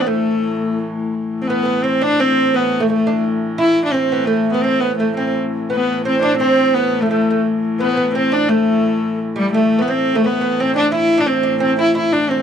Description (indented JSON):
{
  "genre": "medieval",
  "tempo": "172 BPM",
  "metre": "3/4",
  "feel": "straight",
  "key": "A minor",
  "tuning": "A4 = 444 Hz",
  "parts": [
    { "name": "clear viola da gamba", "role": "melody", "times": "0.0-12.4 s", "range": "G3 to E4", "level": "-16 LUFS", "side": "left 2 dB", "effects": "none" },
    { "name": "bright alto recorder", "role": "second line", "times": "0.0-0.8, 5.7-9.2 s", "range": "A4 to D5", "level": "-23 LUFS", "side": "left 7 dB", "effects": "none" },
    { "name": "lute", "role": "second line", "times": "0.0-12.4 s", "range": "G3 to E4", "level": "-21 LUFS", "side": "right 9 dB", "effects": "none" },
    { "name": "rich hurdy-gurdy", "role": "drone", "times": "0.0-12.4 s", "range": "A2 to E3", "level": "-24 LUFS", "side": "left 3 dB", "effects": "none" }
  ],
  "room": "light reverb",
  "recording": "dry, close 1970s-style studio recording",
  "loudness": "-14 LUFS",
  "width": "side -8 dB against mid",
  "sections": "0.0-1.1 A section; 1.1-9.5 A section; 9.5-12.4 B section",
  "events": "none",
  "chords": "none"
}